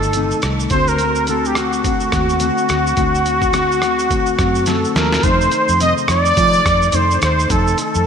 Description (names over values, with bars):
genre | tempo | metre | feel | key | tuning
indie pop, bedroom pop | 106 BPM | 4/4 | swing 60% on 16ths | unclear | A4 = 440 Hz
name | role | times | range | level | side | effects
breathy trumpet | melody | 0.0-8.1 s | F#4 to Eb5 | -16 LUFS | equal | analog chorus, analog delay
mellow electric guitar | accompaniment | 0.0-8.1 s | F2 to F#4 | -22 LUFS | left 4 dB | lush chorus, warbly pitch drift
vintage muted fingered electric bass | bass | 0.0-8.1 s | G1 to F3 | -21 LUFS | equal | none
lo-fi sampler-style drum kit | drums | 0.0-8.1 s | hi-hat, kick drum, rim click, shaker, snare drum | -21 LUFS | right 1 dB | none
room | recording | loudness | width
wet lush hall reverb, RT60 1.9 s | dreamy mix soaked in reverb | -13 LUFS | side -7 dB against mid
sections
0.0-5.2 A section; 5.2-8.1 B section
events
drum fill 4.7-5.2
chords
0.0 F7; 0.7 D7; 5.2 F7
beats
0.15 | 0.71 1.28 1.84 2.41 | 2.98 3.54 4.11 4.67 | 5.24 5.81 6.37 6.94 | 7.50